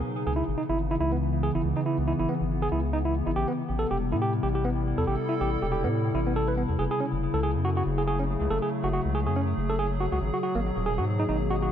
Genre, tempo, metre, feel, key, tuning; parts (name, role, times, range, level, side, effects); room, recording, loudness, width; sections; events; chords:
IDM; 140 BPM; 4/4; swing 56% on 16ths; C# minor; A4 = 440 Hz
warbly tape-like pad; sustained chords; 0.0-11.7 s; B2 to A4; -29 LUFS; left 2 dB; chorus, built-in reverb
round analog bass; bass; 0.0-11.7 s; D#1 to A2; -29 LUFS; equal
overdriven tine electric piano; arpeggios; 0.3-11.7 s; A#3 to B4; -29 LUFS; right 2 dB; digital delay
light reverb; -24 LUFS; side -9 dB against mid
0.0-11.7 A section
0.0 C#m9; 3.4 Am9; 6.8 F#m9; 10.2 G#m9